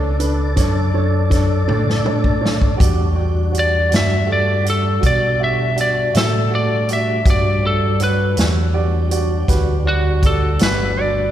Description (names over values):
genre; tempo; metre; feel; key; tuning
slow blues; 54 BPM (dotted quarters); 12/8; straight; unclear; A4 = 440 Hz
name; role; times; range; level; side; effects
warm upright piano; accompaniment; 0.0-11.3 s; D4 to E5; -24 LUFS; right 4 dB; none
tonewheel organ; sustained chords; 0.0-11.3 s; F#3 to D5; -26 LUFS; left 1 dB; overdrive, chorus vibrato, slow rotary speaker
fingered electric bass; bass; 0.0-11.3 s; G1 to B2; -18 LUFS; equal; none
vintage drum kit; drums; 0.2-10.8 s; hi-hat, kick drum, snare drum, toms; -20 LUFS; equal; none
lightly driven lead guitar; melody; 3.6-11.3 s; F#4 to E5; -20 LUFS; left 1 dB; none
room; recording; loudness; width
wet church reverb, RT60 2.9 s; recorded in a church or concert hall; -14 LUFS; side -11 dB against mid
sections
0.0-11.3 A section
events
lead electric guitar solo 0.0-11.3; drum fill 1.7-2.8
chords
0.0 Bm9 (rootless); 2.8 Em9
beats
0.58 1.69 | 2.80 3.92 5.03 6.14 | 7.26 8.37 9.49 10.60